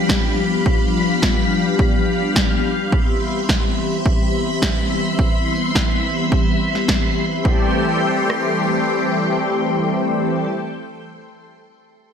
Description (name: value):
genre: nu-disco, nu disco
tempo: 106 BPM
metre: 4/4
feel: straight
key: A minor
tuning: A4 = 440 Hz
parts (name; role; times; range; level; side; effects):
- warm analog pad; accompaniment; 0.0-10.5 s; E3 to G4; -20 LUFS; left 2 dB; chorus, digital delay
- string machine, full ensemble; sustained chords; 0.0-10.5 s; G4 to C6; -24 LUFS; equal; phaser, ensemble chorus, sidechain pumping
- electronic snare drum; drums; 0.1-7.0 s; none; -22 LUFS; equal; small room reverb, gated reverb
- house drum kit; drums; 0.1-8.4 s; kick drum, rim click; -19 LUFS; right 1 dB; small room reverb
room: light reverb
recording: bright 1980s-style digital production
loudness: -16 LUFS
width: side -7 dB against mid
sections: 0.0-7.5 A section; 7.5-9.7 B section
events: filter sweep on analog synth pad 0.0-7.5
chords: 0.0 G7; 2.9 Cmaj7; 7.5 Am7